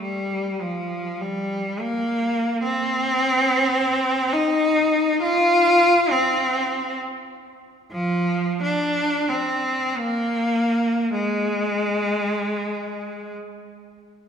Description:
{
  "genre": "classical, free, expressive piece for unaccompanied cello",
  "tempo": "free time",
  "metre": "none",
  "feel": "none",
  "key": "C minor",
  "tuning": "A4 = 440 Hz",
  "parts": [
    { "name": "clear cello", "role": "solo", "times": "0.0-13.3 s", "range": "F3 to F4", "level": "-20 LUFS", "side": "equal", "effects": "none" }
  ],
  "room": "wet church reverb, RT60 2.5 s",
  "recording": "minimal, uncompressed stereo recording",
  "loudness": "-19 LUFS",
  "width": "side -7 dB against mid",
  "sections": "0.0-14.3 A section",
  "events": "none",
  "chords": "none",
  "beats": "free time"
}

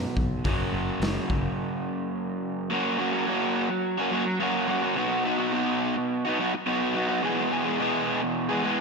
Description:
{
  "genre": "classic rock",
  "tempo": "106 BPM",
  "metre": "4/4",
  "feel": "straight",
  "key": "F# mixolydian",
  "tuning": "A4 = 439 Hz",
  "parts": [
    { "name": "crunchy overdriven guitar", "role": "riff", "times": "0.0-8.8 s", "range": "E2 to G#4", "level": "-24 LUFS", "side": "equal", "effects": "none" },
    { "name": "fingered electric bass", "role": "bass", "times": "0.0-1.5 s", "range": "F#1 to B1", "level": "-32 LUFS", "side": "left 1 dB", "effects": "none" },
    { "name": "raw garage drum kit", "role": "drums", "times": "0.2-1.4 s", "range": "hi-hat, kick drum, snare drum", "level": "-29 LUFS", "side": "left 1 dB", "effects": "none" }
  ],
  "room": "wet concert hall reverb, RT60 2.0 s, small room reverb",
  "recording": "big arena sound",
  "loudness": "-24 LUFS",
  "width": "side -4 dB against mid",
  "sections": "0.0-2.7 A section; 2.7-8.8 B section",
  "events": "break 1.6-2.7",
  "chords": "0.5 F#; 5.0 B; 7.2 E",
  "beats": "| 0.45 1.02 1.58 2.15 | 2.71 3.28 3.84 4.41 | 4.97 5.54 6.10 6.66 | 7.23 7.79 8.36"
}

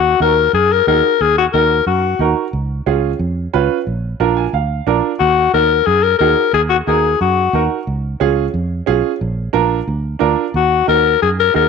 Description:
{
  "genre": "latin",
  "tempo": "180 BPM",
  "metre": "4/4",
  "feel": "straight",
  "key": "Eb minor",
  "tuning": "A4 = 440 Hz",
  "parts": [
    { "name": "raspy alto saxophone", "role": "melody", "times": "0.0-2.3, 5.2-7.7, 10.6-11.7 s", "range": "Gb4 to Bb4", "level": "-13 LUFS", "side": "left 9 dB", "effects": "none" },
    { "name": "fingered electric bass", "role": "bass", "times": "0.0-11.7 s", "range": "Bb1 to Gb2", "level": "-19 LUFS", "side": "right 2 dB", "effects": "none" },
    { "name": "warm upright piano", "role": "accompaniment", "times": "0.2-11.7 s", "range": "Db4 to Ab5", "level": "-18 LUFS", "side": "right 12 dB", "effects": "none" }
  ],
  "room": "wet spring reverb, RT60 1.2 s, studio reverb",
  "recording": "1960s-style stereo with parts hard left and right",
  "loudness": "-13 LUFS",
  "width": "side -5 dB against mid",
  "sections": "0.0-11.7 A section",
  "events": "upright piano fill 4.2-5.2, 10.0-10.5",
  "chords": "0.0 Ebm; 2.5 Db; 3.9 Bb; 5.2 Ebm; 7.9 Db; 9.2 Bb; 10.5 Ebm",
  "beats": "0.20 0.54 0.87 | 1.20 1.53 1.87 2.20 | 2.54 2.87 3.20 3.54 | 3.87 4.20 4.54 4.87 | 5.20 5.54 5.87 6.20 | 6.54 6.87 7.21 7.54 | 7.87 8.21 8.54 8.88 | 9.21 9.54 9.88 10.21 | 10.55 10.88 11.21 11.55"
}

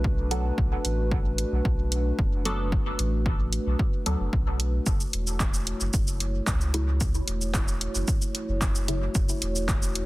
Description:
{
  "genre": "dub techno",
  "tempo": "112 BPM",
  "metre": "4/4",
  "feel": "straight",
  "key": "F# minor",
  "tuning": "A4 = 439 Hz",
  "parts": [
    { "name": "dark analog pad", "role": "sustained chords", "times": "0.0-10.1 s", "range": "A3 to C#5", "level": "-33 LUFS", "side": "equal", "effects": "chorus, sidechain pumping" },
    { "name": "soft dub sub bass", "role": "bass", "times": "0.0-10.0 s", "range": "E1 to D2", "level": "-28 LUFS", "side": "equal", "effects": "sidechain pumping" },
    { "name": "electronic kick drum", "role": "drums", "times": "0.0-9.8 s", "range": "none", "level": "-26 LUFS", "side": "equal", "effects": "none" },
    { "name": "filtered dub chord stab", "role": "stabs", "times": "0.3-9.0 s", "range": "C#3 to A4", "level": "-35 LUFS", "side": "equal", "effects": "phaser, sidechain pumping, dub echo" },
    { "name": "deep house drum kit", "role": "drums", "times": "0.3-10.1 s", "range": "handclaps, hi-hat, shaker", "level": "-31 LUFS", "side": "equal", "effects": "overdrive, dub echo" }
  ],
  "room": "digital ambience",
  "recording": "dense, heavily limited modern master",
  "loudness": "-24 LUFS",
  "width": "side -19 dB against mid",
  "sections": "0.0-10.1 A section",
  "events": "none",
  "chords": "0.0 Bm7; 4.9 F#m7",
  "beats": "0.04 | 0.58 1.11 1.65 2.19 | 2.72 3.26 3.79 4.33 | 4.87 5.40 5.94 6.47 | 7.01 7.54 8.08 8.62 | 9.15 9.69"
}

